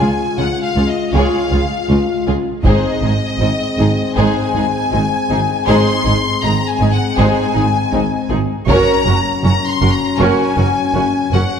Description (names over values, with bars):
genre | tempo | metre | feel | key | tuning
cinematic, epic orchestral film score | 80 BPM | 4/4 | straight | unclear | A4 = 442 Hz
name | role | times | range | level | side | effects
warm symphonic violin section | melody | 0.0-11.6 s | Eb5 to C6 | -20 LUFS | left 4 dB | none
warm symphonic violin section | second line | 0.0-11.4 s | C4 to Db5 | -22 LUFS | left 1 dB | none
warm symphonic viola section | accompaniment | 0.0-11.4 s | Ab3 to Gb4 | -22 LUFS | right 2 dB | none
mellow French horn section | sustained chords | 0.0-11.6 s | Gb3 to F4 | -21 LUFS | left 5 dB | none
clear symphonic double bass section | bass | 0.0-11.4 s | Gb1 to Db2 | -19 LUFS | right 3 dB | none
rich symphonic cello section | bass | 0.0-11.4 s | Db2 to Ab2 | -20 LUFS | right 2 dB | none
taiko ensemble | drums | 2.6-4.1, 8.7-10.2 s | none | -19 LUFS | equal | none
room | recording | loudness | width
moderate concert hall reverb, RT60 2.2 s | none | -13 LUFS | side -7 dB against mid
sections
0.0-11.6 A section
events
none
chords
0.0 Db; 2.7 Ab; 8.7 Gb